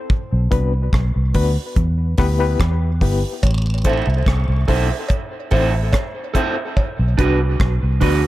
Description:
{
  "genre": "dub reggae",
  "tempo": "72 BPM",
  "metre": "4/4",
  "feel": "straight",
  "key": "A dorian",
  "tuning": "A4 = 440 Hz",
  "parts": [
    { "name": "deep reggae drum kit", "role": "drums", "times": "0.1-8.2 s", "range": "hi-hat, kick drum, rim click", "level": "-20 LUFS", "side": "equal", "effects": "none" },
    { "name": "vintage muted fingered electric bass", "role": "bass", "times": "0.3-8.2 s", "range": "G1 to E2", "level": "-18 LUFS", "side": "equal", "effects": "none" },
    { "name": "reed electric piano", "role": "stabs", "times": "0.5-8.2 s", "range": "B3 to C5", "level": "-26 LUFS", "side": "left 5 dB", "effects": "overdrive, fast tremolo, tape echo" },
    { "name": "cowbell and jawbone-type rattle", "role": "percussion", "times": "3.4-7.0 s", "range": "none", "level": "-31 LUFS", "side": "right 1 dB", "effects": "tape echo" },
    { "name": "electric guitar at the edge of break-up", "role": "accompaniment", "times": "3.9-8.2 s", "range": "D4 to E5", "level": "-22 LUFS", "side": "right 5 dB", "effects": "tape echo" }
  ],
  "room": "small room ambience",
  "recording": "echo-heavy mix",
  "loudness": "-16 LUFS",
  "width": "side -16 dB against mid",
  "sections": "0.0-8.3 A section",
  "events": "break 0.0-3.4",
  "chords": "0.1 Bm; 1.8 Em; 3.4 Am; 6.8 Bm"
}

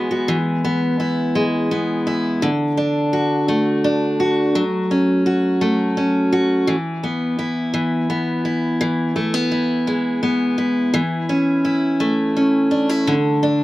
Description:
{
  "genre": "pop",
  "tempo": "56 BPM (dotted quarters)",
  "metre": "6/8",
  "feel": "straight",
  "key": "unclear",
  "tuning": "A4 = 440 Hz",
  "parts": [
    { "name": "picked steel-string acoustic guitar", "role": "solo", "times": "0.0-13.6 s", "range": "D3 to F#4", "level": "-17 LUFS", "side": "equal", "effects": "none" }
  ],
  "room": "light reverb",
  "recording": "recorded outdoors, with no room sound",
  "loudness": "-17 LUFS",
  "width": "side -17 dB against mid",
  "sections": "0.3-13.6 A section",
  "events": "none",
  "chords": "0.3 E; 2.4 D; 4.6 F#m; 6.7 E5; 7.7 E; 10.9 A/E; 13.1 D5"
}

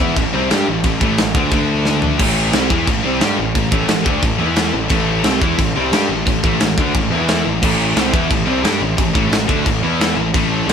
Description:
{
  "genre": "heavy metal",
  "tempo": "177 BPM",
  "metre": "4/4",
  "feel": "straight",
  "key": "A minor",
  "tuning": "A4 = 439 Hz",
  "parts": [
    { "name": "heavy high-gain guitar", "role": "riff", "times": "0.0-10.7 s", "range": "A2 to G4", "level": "-20 LUFS", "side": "left 2 dB", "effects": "distortion" },
    { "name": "raw garage guitar", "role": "riff", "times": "0.0-10.7 s", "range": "A2 to G4", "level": "-21 LUFS", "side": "equal", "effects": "overdrive" },
    { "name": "fuzz picked electric bass", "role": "bass", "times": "0.0-10.7 s", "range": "A1 to G2", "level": "-21 LUFS", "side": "equal", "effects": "overdrive" },
    { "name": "tight metal drum kit", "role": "drums", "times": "0.0-10.7 s", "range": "china cymbal, crash cymbal, kick drum, snare drum, toms", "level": "-18 LUFS", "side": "equal", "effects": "none" }
  ],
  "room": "light reverb",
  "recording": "band playing live in one room",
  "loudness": "-14 LUFS",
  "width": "side -7 dB against mid",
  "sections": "0.0-2.2 A section; 2.2-10.7 A section",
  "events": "drum fill 1.9-2.2",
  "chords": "0.0 Am; 1.5 D5; 2.2 Am; 4.4 E5; 4.7 Am; 7.1 E5; 7.4 Am; 9.8 E5; 10.2 Am"
}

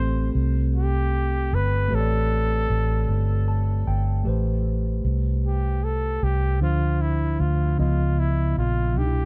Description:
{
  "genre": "slow six-eight R&B",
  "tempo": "51 BPM (dotted quarters)",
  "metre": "6/8",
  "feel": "straight",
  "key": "A minor",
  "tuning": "A4 = 440 Hz",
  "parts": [
    { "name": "breathy flugelhorn", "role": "melody", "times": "0.0-9.3 s", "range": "E4 to C5", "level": "-31 LUFS", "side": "equal", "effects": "digital delay" },
    { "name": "mellow tine electric piano", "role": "accompaniment", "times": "0.0-9.3 s", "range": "B2 to A5", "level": "-31 LUFS", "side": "equal", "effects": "none" },
    { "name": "vintage muted fingered electric bass", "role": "bass", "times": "0.0-9.3 s", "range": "G1 to D2", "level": "-24 LUFS", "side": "equal", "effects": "none" }
  ],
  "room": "little or no reverb",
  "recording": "none",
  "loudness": "-23 LUFS",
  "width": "mono",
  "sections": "0.0-4.3 A section; 4.3-9.3 B section",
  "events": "tine electric piano fill 3.1-4.3; flugelhorn solo 4.3-9.3",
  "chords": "0.0 Am9; 6.6 Dm7; 7.8 C#9"
}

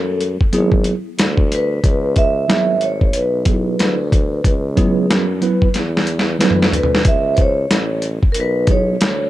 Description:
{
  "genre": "hip hop, jazz-hop",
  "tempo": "92 BPM",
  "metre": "4/4",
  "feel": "swing 61% on 16ths",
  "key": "C# minor",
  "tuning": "A4 = 440 Hz",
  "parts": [
    { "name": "vibraphone with medium mallets", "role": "melody", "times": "0.0-9.3 s", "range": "A4 to E5", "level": "-20 LUFS", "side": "right 1 dB", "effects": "none" },
    { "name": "warm tuba", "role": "bass", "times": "0.0-9.3 s", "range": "G#1 to F#2", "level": "-22 LUFS", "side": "equal", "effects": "none" },
    { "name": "dusty soul sampler-style drum kit", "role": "drums", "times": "0.2-9.2 s", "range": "hi-hat, kick drum, snare drum, toms", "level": "-16 LUFS", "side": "equal", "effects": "overdrive" },
    { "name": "mellow tine electric piano", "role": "accompaniment", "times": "0.5-8.9 s", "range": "F#3 to B4", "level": "-20 LUFS", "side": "right 2 dB", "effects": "medium stereo tremolo" }
  ],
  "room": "light reverb",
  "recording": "dark, warm production",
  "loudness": "-14 LUFS",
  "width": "side -15 dB against mid",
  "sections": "0.0-7.1 A section; 7.1-9.3 A section",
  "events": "drum fill 5.7-7.1",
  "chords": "0.0 D#dim (rootless); 0.5 G#m7b5; 1.8 C#m7; 7.1 C#7(no3)"
}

